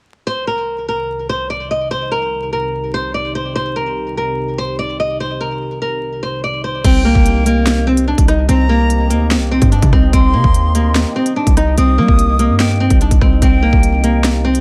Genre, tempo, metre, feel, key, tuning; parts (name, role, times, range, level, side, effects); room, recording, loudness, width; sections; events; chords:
hip hop, drill; 146 BPM; 4/4; half-time; C minor; A4 = 439 Hz
flamenco guitar; melody; 0.3-14.6 s; Bb3 to Eb5; -20 LUFS; equal; low-pass filter, digital delay
dark analog pad; sustained chords; 0.3-14.6 s; C2 to Eb5; -28 LUFS; equal; chorus
breathy silver concert flute; second line; 6.8-14.2 s; G5 to Eb6; -24 LUFS; equal; digital delay
hard-hitting 808-style bass; bass; 6.8-14.6 s; C2 to G3; -17 LUFS; equal
drill drum kit; drums; 6.8-14.6 s; crash cymbal, finger snaps, hi-hat, kick drum, rim click, snare drum; -16 LUFS; equal
little or no reverb; vinyl crackle; -15 LUFS; mono
0.3-6.8 A section; 6.8-14.6 B section
0.3 Cm